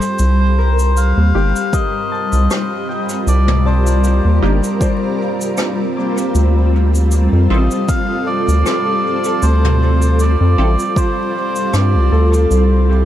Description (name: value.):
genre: ambient dub.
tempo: 78 BPM.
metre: 4/4.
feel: swing 55% on 16ths.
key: C dorian.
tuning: A4 = 442 Hz.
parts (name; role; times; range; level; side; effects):
melodica; melody; 0.0-12.3 s; C5 to F5; -22 LUFS; equal; dub echo.
granular cloud pad; sustained chords; 0.0-13.1 s; G3 to Bb4; -19 LUFS; equal; built-in reverb.
jazz brush drum kit; drums; 0.0-12.7 s; cabasa, rim click, toms; -25 LUFS; equal; dub echo.
round analog bass; bass; 0.2-13.1 s; G1 to G2; -12 LUFS; equal; none.
concert harp; arpeggios; 0.6-13.1 s; Bb3 to D6; -25 LUFS; left 3 dB; dub echo.
filtered dub chord stab; stabs; 1.3-10.7 s; Bb3 to A4; -28 LUFS; right 1 dB; none.
electronic kick drum; drums; 1.7-11.1 s; none; -17 LUFS; equal; overdrive.
room: light reverb, studio reverb.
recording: vinyl crackle.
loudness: -12 LUFS.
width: side -12 dB against mid.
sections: 0.2-13.1 A section.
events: none.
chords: 0.2 Cm7; 6.3 Dm7; 12.5 C5.